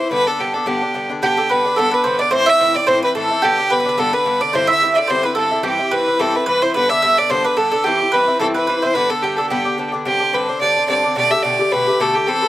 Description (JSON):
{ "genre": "celtic folk, Celtic reel", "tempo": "217 BPM", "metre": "4/4", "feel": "swing 55% on 8ths", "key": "G major", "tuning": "A4 = 440 Hz", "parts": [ { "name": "clear fiddle", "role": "melody", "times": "0.0-12.5 s", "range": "G4 to E5", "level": "-16 LUFS", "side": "equal", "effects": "slapback echo" }, { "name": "Irish bouzouki", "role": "accompaniment", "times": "0.0-12.5 s", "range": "G2 to B4", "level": "-21 LUFS", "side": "left 2 dB", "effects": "none" }, { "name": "mandolin", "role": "second line", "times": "1.2-9.9 s", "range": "G4 to E5", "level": "-19 LUFS", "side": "right 3 dB", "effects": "slapback echo" } ], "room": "little or no reverb", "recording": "recorded outdoors, with no room sound", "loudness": "-14 LUFS", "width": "side -14 dB against mid", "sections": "0.0-1.2 A section; 1.2-10.1 A section; 10.1-12.5 B section", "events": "none", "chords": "0.1 G; 2.3 Am; 3.4 G; 4.5 Cadd9; 5.6 C; 6.7 G; 7.8 C; 8.9 G; 10.1 Csus2; 11.2 Gadd9/B", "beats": "| 0.11 0.39 0.66 0.94 | 1.22 1.49 1.77 2.05 | 2.32 2.60 2.87 3.15 | 3.43 3.70 3.98 4.25 | 4.53 4.81 5.08 5.36 | 5.64 5.91 6.19 6.46 | 6.74 7.02 7.29 7.57 | 7.84 8.12 8.40 8.67 | 8.95 9.23 9.50 9.78 | 10.06 10.33 10.61 10.89 | 11.16 11.44 11.72 11.99 | 12.27" }